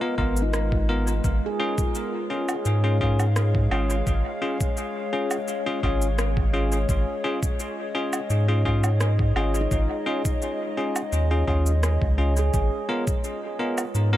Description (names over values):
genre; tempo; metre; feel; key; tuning
ambient dub; 85 BPM; 4/4; straight; unclear; A4 = 440 Hz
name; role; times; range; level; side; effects
warbly tape-like pad; sustained chords; 0.0-14.2 s; G#3 to E#5; -30 LUFS; left 1 dB; chorus, built-in reverb
bell-like tine electric piano; stabs; 0.0-14.2 s; B3 to A#4; -28 LUFS; left 1 dB; dub echo
warm sub bass; bass; 0.2-14.2 s; G#1 to G#2; -22 LUFS; equal; none
electronic kick drum; drums; 0.2-13.2 s; none; -26 LUFS; equal; none
handpan; arpeggios; 0.4-3.3, 9.6-14.2 s; D#4 to G#4; -34 LUFS; equal; vintage 12-bit sampler grit, dub echo
electronic shaker, rim click and woodblock; drums; 0.4-14.1 s; none; -33 LUFS; right 2 dB; overdrive, dub echo
room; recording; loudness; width
light reverb, digital ambience; none; -22 LUFS; side -14 dB against mid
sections
0.0-14.2 A section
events
none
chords
0.0 G#m69; 1.2 C#/G#